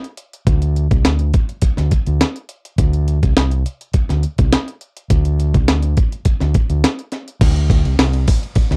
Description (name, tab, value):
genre	funk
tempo	104 BPM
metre	4/4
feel	straight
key	unclear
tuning	A4 = 440 Hz
part	breakbeat sampler-style drum kit	drums	0.0-8.8 s	crash cymbal, hi-hat, kick drum, ride cymbal, snare drum	-18 LUFS	equal	none
part	overdriven fingered electric bass	bass	0.5-8.8 s	C2 to D2	-19 LUFS	equal	none
room	little or no reverb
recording	dry, close 1970s-style studio recording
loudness	-17 LUFS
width	mono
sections	0.0-7.4 A section; 7.4-8.8 B section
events	none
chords	none